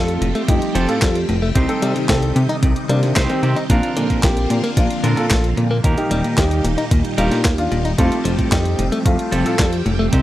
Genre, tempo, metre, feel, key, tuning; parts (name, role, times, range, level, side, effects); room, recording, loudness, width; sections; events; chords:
italo disco; 112 BPM; 4/4; straight; A4 = 440 Hz
warm concert grand piano; melody; 0.0-9.7 s; Eb3 to A4; -24 LUFS; left 1 dB
phased string machine; sustained chords; 0.0-10.2 s; Bb2 to G4; -25 LUFS; equal; ensemble chorus, phaser
clean electric guitar; stabs; 0.0-10.2 s; Bb3 to C5; -25 LUFS; right 3 dB
chorused synth bass; bass; 0.0-10.2 s; Eb1 to C3; -20 LUFS; equal; tube saturation
clean 12-bit digital drum machine; drums; 0.1-10.2 s; handclaps, hi-hat, snare drum; -23 LUFS; equal; overdrive, small room ambience
direct-recorded clean electric guitar; arpeggios; 0.2-10.2 s; A2 to Eb4; -23 LUFS; left 2 dB; spring reverb, analog delay
electronic kick drum; drums; 0.5-10.2 s; -18 LUFS; equal; overdrive, small room ambience
digital ambience; dry, gritty hardware recording; -15 LUFS; side -14 dB against mid
0.0-10.2 A section
0.0 Fadd9; 1.6 Cm; 3.7 Bbadd9; 5.8 Eb; 8.0 Fadd9